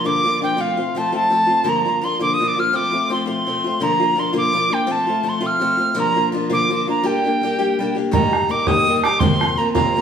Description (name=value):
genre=celtic folk, Celtic jig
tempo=112 BPM (dotted quarters)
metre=6/8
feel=straight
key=G minor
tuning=A4 = 440 Hz
part: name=bright wooden whistle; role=melody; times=0.0-10.0 s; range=F5 to F6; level=-18 LUFS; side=right 1 dB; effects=none
part: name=picked acoustic archtop guitar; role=accompaniment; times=0.0-10.0 s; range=F2 to G4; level=-21 LUFS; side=left 2 dB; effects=none
part: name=bodhran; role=percussion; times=8.1-9.8 s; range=none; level=-20 LUFS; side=right 2 dB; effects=none
room=wet large studio reverb, RT60 1.1 s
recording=band playing live in one room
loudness=-16 LUFS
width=side -8 dB against mid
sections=0.0-8.1 A section; 8.1-10.0 B section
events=none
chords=0.0 Gm7; 0.6 F; 1.7 Gm7; 2.7 F; 3.8 Gm7; 4.9 F; 6.0 Gm7; 7.0 Gm; 8.1 Eb; 9.2 Fsus4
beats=0.06 | 0.60 1.13 | 1.67 2.20 | 2.74 3.28 | 3.81 4.35 | 4.89 5.42 | 5.96 6.50 | 7.04 7.58 | 8.12 8.66 | 9.20 9.75